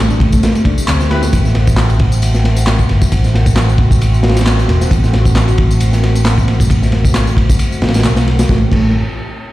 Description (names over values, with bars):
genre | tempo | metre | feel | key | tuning
breakbeat, breaks | 134 BPM | 4/4 | swing 55% on 16ths | unclear | A4 = 440 Hz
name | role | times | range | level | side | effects
phased analog pad | sustained chords | 0.0-8.7 s | C3 to G4 | -22 LUFS | left 1 dB | phaser, chorus, vintage 12-bit sampler grit, sidechain pumping
mellow reed electric piano | riff | 0.0-1.3, 8.5-8.9 s | A3 to D4 | -18 LUFS | right 1 dB | vintage 12-bit sampler grit, dub echo
fingered electric bass | bass | 0.0-8.9 s | E1 to D2 | -13 LUFS | equal | tube saturation
electronic tambourine and handclaps | drums | 0.1-8.5 s | none | -23 LUFS | left 1 dB | none
crunchy breakbeat drum kit | drums | 0.2-8.8 s | crash cymbal, kick drum, ride cymbal, snare drum | -14 LUFS | equal | none
mellow brass ensemble | stabs | 1.1-1.2 s | C4 to B4 | -25 LUFS | left 2 dB | dub echo
room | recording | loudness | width
small room ambience | played on a big sound system in a bare room, large studio reverb | -10 LUFS | side -16 dB against mid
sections
0.0-8.5 A section; 8.5-9.5 B section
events
none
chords
0.0 Am7